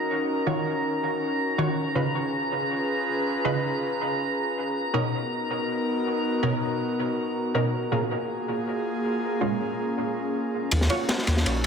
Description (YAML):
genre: drum and bass, jungle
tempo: 161 BPM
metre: 4/4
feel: straight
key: Eb minor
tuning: A4 = 440 Hz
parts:
  - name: airy breathy pad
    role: sustained chords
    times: 0.0-11.7 s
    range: Bb3 to Cb5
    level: -28 LUFS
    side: equal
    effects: chorus
  - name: drifting glass-harmonics texture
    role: texture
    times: 0.0-10.7 s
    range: Bb5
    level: -32 LUFS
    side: right 2 dB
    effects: chorus, built-in reverb
  - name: orchestra-hit-like synth stab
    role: stabs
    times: 0.5-11.0 s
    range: Bb2 to Db5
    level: -29 LUFS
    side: right 1 dB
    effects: built-in reverb, dub echo
  - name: soft dub sub bass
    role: bass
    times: 10.7-11.7 s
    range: Bb1 to Eb2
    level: -23 LUFS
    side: equal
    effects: tube saturation
  - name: crunchy breakbeat drum kit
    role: drums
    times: 10.7-11.7 s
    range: kick drum, ride cymbal, snare drum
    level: -25 LUFS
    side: equal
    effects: high-pass filter on kick, high-pass filter on cymbals, high-pass filter on snare, high-pass filter on room
room: moderate echo chamber reverb, RT60 1.7 s, studio reverb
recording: none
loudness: -24 LUFS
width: side -6 dB against mid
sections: 0.0-10.7 A section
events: filter sweep on analog synth pad 0.0-10.7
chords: 0.0 Ebm7; 1.8 Db7; 4.8 Bmaj7; 7.7 Gbmaj9/Bb; 9.2 Bbm7; 10.7 Ebm7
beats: | 0.28 0.65 1.03 1.40 | 1.77 2.14 2.52 2.89 | 3.26 3.63 4.01 4.38 | 4.75 5.12 5.50 5.87 | 6.24 6.62 6.99 7.36 | 7.73 8.11 8.48 8.85 | 9.22 9.60 9.97 10.34 | 10.71 11.09 11.46